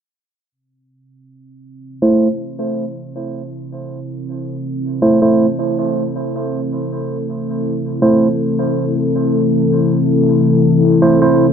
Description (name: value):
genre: ambient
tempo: free time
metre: none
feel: none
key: A minor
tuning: A4 = 444 Hz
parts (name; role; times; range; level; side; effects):
- deep dark ambient pad; sustained chords; 1.7-11.5 s; C4 to A4; -16 LUFS; left 2 dB; chorus, built-in reverb
- tine electric piano; stabs; 2.0-11.5 s; A3 to C5; -16 LUFS; right 2 dB; low-pass filter, dub echo
room: moderate echo chamber reverb, RT60 1.4 s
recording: echo-heavy mix, low-pass filter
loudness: -13 LUFS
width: side -7 dB against mid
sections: 0.5-11.5 A section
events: filter sweep on ambient pad 0.5-11.5; filter sweep 0.5-11.5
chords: 0.5 Am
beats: free time